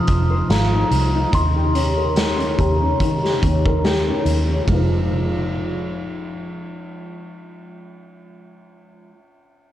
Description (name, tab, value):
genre	indie pop, bedroom pop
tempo	72 BPM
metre	4/4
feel	swing 55% on 16ths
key	F minor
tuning	A4 = 442 Hz
part	glockenspiel with rubber mallets	melody	0.0-9.1 s	Bb5 to F6	-26 LUFS	equal	analog chorus, low-pass filter
part	nylon-string guitar	accompaniment	0.0-9.2 s	Eb3 to C5	-23 LUFS	left 1 dB	analog chorus, warbly pitch drift, low-pass filter
part	vintage muted fingered electric bass	bass	0.1-9.1 s	F1 to Eb3	-21 LUFS	equal	none
part	raw garage drum kit	drums	0.1-4.9 s	hi-hat, kick drum, ride cymbal, snare drum	-23 LUFS	equal	none
room	light reverb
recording	worn, warbling old tape, cassette tape, warbly pitch drift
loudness	-16 LUFS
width	side -12 dB against mid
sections	0.0-4.7 A section; 4.7-8.0 B section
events	filter sweep 0.0-4.7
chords	0.0 Fm7; 1.3 Eb7; 4.7 Fm7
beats	0.50 | 1.33 2.17 3.00 3.84 | 4.67 5.51 6.34 7.18